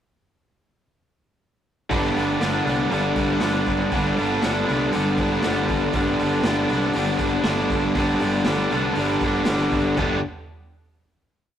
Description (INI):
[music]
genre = garage rock duo or trio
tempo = 119 BPM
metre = 4/4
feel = straight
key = G major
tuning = A4 = 438 Hz
[part]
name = overdriven electric guitar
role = riff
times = 1.9-10.2 s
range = G2 to G4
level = -20 LUFS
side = equal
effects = none
[part]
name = growling picked electric bass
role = bass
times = 1.9-10.2 s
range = G1 to C2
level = -30 LUFS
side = equal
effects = overdrive
[part]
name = raw garage drum kit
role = drums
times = 1.9-10.1 s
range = china cymbal, hi-hat, kick drum, snare drum, toms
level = -29 LUFS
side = equal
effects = none
[sound]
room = light reverb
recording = rough rehearsal-room recording, tube saturation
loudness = -19 LUFS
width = side -9 dB against mid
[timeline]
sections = 1.9-10.0 verse; 10.0-11.6 final chord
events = none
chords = 1.9 G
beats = | 1.91 2.41 2.91 3.41 | 3.92 4.42 4.92 5.43 | 5.93 6.44 6.95 7.45 | 7.96 8.46 8.97 9.48 | 9.98